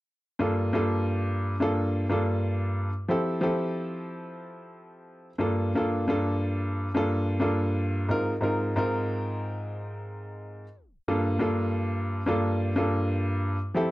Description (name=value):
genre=hip hop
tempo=90 BPM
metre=4/4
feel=swing 62% on 16ths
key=G minor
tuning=A4 = 436 Hz
part: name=warm grand piano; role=accompaniment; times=0.4-13.9 s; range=G2 to Bb4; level=-25 LUFS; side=equal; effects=cassette tape
room=wet small room reverb, RT60 0.5 s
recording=tape stop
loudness=-25 LUFS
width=side -17 dB against mid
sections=0.4-11.1 A section; 11.1-13.9 B section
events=tape stop 10.8-11.1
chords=0.4 Gm7; 3.1 Fmaj7; 5.4 Gm7; 8.1 Ab6; 11.1 Gm7